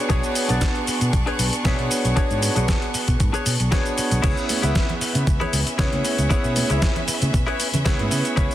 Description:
nu-disco, nu disco; 116 BPM; 4/4; swing 53% on 16ths; B dorian; A4 = 439 Hz
warm concert grand piano; accompaniment; 0.0-8.5 s; B3 to E5; -26 LUFS; right 1 dB; sidechain pumping, analog delay
rich studio violin section; sustained chords; 0.0-8.5 s; B3 to C#6; -30 LUFS; right 1 dB; sidechain pumping
direct-recorded clean electric guitar; riff; 0.1-8.5 s; D4 to E5; -30 LUFS; left 4 dB; lush chorus, analog delay
fingered electric bass; bass; 0.1-8.5 s; B1 to C#3; -23 LUFS; equal; sidechain pumping
dusty soul sampler-style drum kit; drums; 0.1-8.5 s; cabasa, crash cymbal, hi-hat, snare drum; -26 LUFS; left 1 dB; studio ambience
electronic kick drum; drums; 0.1-8.5 s; -22 LUFS; equal; studio ambience
congas; percussion; 4.5-8.1 s; -32 LUFS; right 3 dB
light reverb; dense, heavily limited modern master; -18 LUFS; side -13 dB against mid
0.0-8.5 A section
0.0 Bm69; 4.2 C#m7

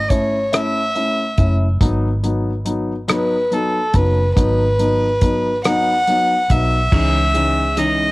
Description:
six-eight pop ballad; 47 BPM (dotted quarters); 6/8; straight; A4 = 435 Hz
warm violin; melody; 0.0-8.1 s; A4 to F#5; -18 LUFS; equal; cassette tape
vintage muted fingered electric bass; bass; 0.0-8.1 s; F#1 to C#2; -20 LUFS; equal
dark baby grand piano; accompaniment; 0.1-8.0 s; E3 to E4; -21 LUFS; left 2 dB; cassette tape
damped 70s drum kit; drums; 0.1-8.0 s; crash cymbal, hi-hat, kick drum, rim click; -18 LUFS; equal; cassette tape
twelve-string electric guitar; arpeggios; 6.9-8.1 s; C#3 to G#4; -24 LUFS; right 3 dB; cassette tape
light reverb, small room ambience; home recording on cassette; -15 LUFS; side -21 dB against mid
0.0-6.9 A section; 6.9-8.1 B section
0.0 A; 1.8 B; 6.9 C#madd9

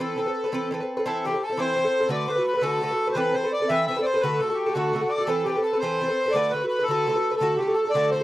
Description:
celtic folk, Celtic jig; 114 BPM (dotted quarters); 6/8; straight; A dorian; A4 = 440 Hz
accordion; melody; 0.0-8.2 s; F#4 to E5; -24 LUFS; equal
Irish bouzouki; accompaniment; 0.0-8.2 s; D3 to B4; -26 LUFS; equal
tin whistle; second line; 1.1-8.2 s; F#5 to F#6; -33 LUFS; left 4 dB; tape echo
little or no reverb; dry, close 1970s-style studio recording; -22 LUFS; side -16 dB against mid
0.0-1.1 A section; 1.1-8.2 A section
0.0 Amadd9; 1.1 Am; 2.1 Bm7; 3.2 Amadd9; 4.2 D; 5.3 Amadd9; 6.3 Bm7; 7.4 D

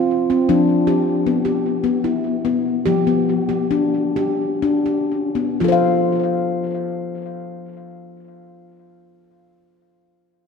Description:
world meditative, meditative tuned percussion; 39-52 BPM (dotted quarters); 6/8; straight; F lydian; A4 = 440 Hz
handpan; solo; 0.0-9.9 s; F3 to F5; -17 LUFS; left 2 dB; tape echo
wet concert hall reverb, RT60 2.5 s; -16 LUFS; side -6 dB against mid
0.0-5.6 A section; 5.6-8.7 B section
slowing down 0.5-5.6
0.5 G/F; 5.6 F

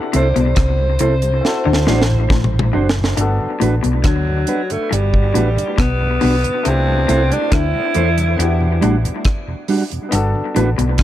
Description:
lovers rock reggae; 69 BPM; 4/4; straight; G major; A4 = 445 Hz
warm grand piano; accompaniment; 0.0-11.0 s; A3 to A4; -26 LUFS; left 4 dB
mellow tonewheel organ; accompaniment; 0.1-10.9 s; D2 to F#4; -28 LUFS; right 2 dB
electric guitar through a small old amp; riff; 0.1-11.0 s; F#2 to E3; -24 LUFS; left 8 dB; dub echo
mellow electric guitar; stabs; 0.1-10.7 s; G3 to C5; -23 LUFS; right 4 dB; dub echo
hollow-body short-scale fingered electric bass; bass; 0.1-11.0 s; F#1 to E2; -17 LUFS; equal
deep reggae drum kit; drums; 0.1-11.0 s; hi-hat, kick drum, rim click, snare drum, toms; -18 LUFS; equal
growling alto saxophone; melody; 0.2-8.8 s; F#3 to C5; -21 LUFS; right 1 dB; tape echo
studio ambience; -14 LUFS; side -12 dB against mid
0.0-3.2 A section; 3.2-11.0 B section
alto saxophone solo 0.0-3.2; drum fill 1.4-3.2
0.0 C6; 1.4 D7; 3.2 Gmaj7; 6.7 C6; 8.4 Em9; 10.1 Gmaj7

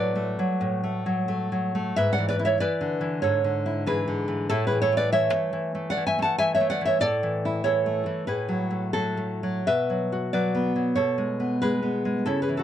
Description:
romantic piece for solo classical guitar; 93 BPM; 4/4; uneven beats, rubato; A major; A4 = 440 Hz
nylon-string guitar; solo; 0.0-12.6 s; G#2 to A5; -23 LUFS; equal
little or no reverb; dry, close 1970s-style studio recording; -23 LUFS; side -10 dB against mid
0.0-12.6 A section
0.0 Bm7/A; 2.0 E7/G#; 4.5 A; 8.3 F#m/A; 9.7 Bm; 11.0 Amaj9/B

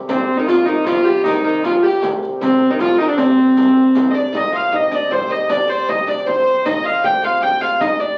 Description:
medieval dance; 156 BPM; 3/4; straight; C minor; A4 = 439 Hz
hand-pumped harmonium; drone; 0.0-8.2 s; C3 to G3; -32 LUFS; equal
dark hurdy-gurdy; melody; 0.1-8.2 s; C4 to G5; -18 LUFS; equal
oud; second line; 0.1-8.2 s; C3 to G4; -24 LUFS; equal
rich fiddle; second line; 0.1-8.2 s; C4 to G5; -24 LUFS; equal
frame drum; percussion; 0.1-8.0 s; -30 LUFS; equal
riq; percussion; 0.1-8.1 s; -34 LUFS; equal
wet studio ambience, RT60 0.5 s; very old 78 rpm record, vinyl crackle; -16 LUFS; mono
0.0-4.3 A section; 4.3-8.2 B section

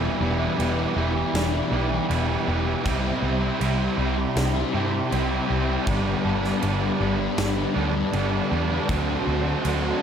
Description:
rock, shoegaze and dream pop; 79 BPM; 4/4; straight; E minor; A4 = 439 Hz
hollow soft pad; sustained chords; 0.0-10.0 s; F#4 to D6; -33 LUFS; equal; ensemble chorus
electric guitar at the edge of break-up; arpeggios; 0.0-10.0 s; F#3 to A4; -32 LUFS; right 2 dB; ensemble chorus, digital delay
crunchy overdriven guitar; riff; 0.0-10.0 s; G2 to F#4; -29 LUFS; right 8 dB; reverse reverb
overdriven semi-hollow guitar; riff; 0.0-10.0 s; G2 to F#4; -29 LUFS; equal
thick fuzz guitar; riff; 0.0-10.0 s; E2 to D4; -29 LUFS; left 10 dB; distortion, analog chorus
vintage muted picked electric bass; bass; 0.0-9.9 s; E1 to G2; -27 LUFS; equal
huge arena drum kit; drums; 0.6-9.8 s; crash cymbal, kick drum, snare drum; -32 LUFS; equal
light reverb, studio ambience; -21 LUFS; side -8 dB against mid
0.0-10.0 A section
0.0 Em7; 2.9 Cmaj7; 5.9 Gadd9; 8.9 D7

